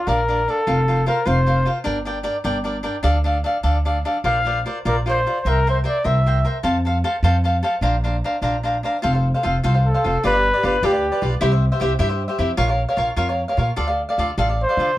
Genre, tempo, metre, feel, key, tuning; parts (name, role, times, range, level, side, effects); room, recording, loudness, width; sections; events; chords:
mexican folk, mariachi; 101 BPM (dotted quarters); 6/8; rubato; Bb major, F major from 9.0 s; A4 = 440 Hz
mellow trumpet; melody; 0.0-1.7, 4.3-6.5, 9.9-11.3, 14.6-15.0 s; G4 to F5; -20 LUFS; left 1 dB
cavaquinho; accompaniment; 0.1-14.9 s; D4 to Bb5; -22 LUFS; equal
upright bass; bass; 0.1-14.9 s; F1 to D3; -20 LUFS; equal
light reverb; -17 LUFS; side -15 dB against mid
0.0-9.0 A section; 9.0-15.0 B section
0.0 Bb; 0.7 Fsus4; 1.9 Gm; 3.0 Dm; 4.2 Bbadd9; 5.5 C7; 6.6 F; 7.8 Bbadd9; 9.0 F; 10.2 G7; 11.4 C; 12.6 Bbm; 13.8 Dm